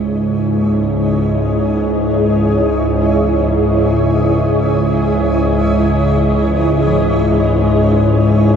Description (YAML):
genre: dark ambient drone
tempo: free time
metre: none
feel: none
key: C# minor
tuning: A4 = 445 Hz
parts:
  - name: granular cloud pad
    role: sustained chords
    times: 0.0-8.6 s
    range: E4 to D#5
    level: -16 LUFS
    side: equal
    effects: built-in reverb
  - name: bowed-like drone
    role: drone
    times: 0.0-8.6 s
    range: C#2 to G#2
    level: -14 LUFS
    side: equal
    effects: built-in reverb
  - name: warm baby grand piano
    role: arpeggios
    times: 0.6-8.6 s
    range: D#2 to G#3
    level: -28 LUFS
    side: left 3 dB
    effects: none
room: wet huge ambient reverb, RT60 7.4 s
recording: none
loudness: -12 LUFS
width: side -7 dB against mid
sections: 0.0-8.6 A section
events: none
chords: 0.0 C#m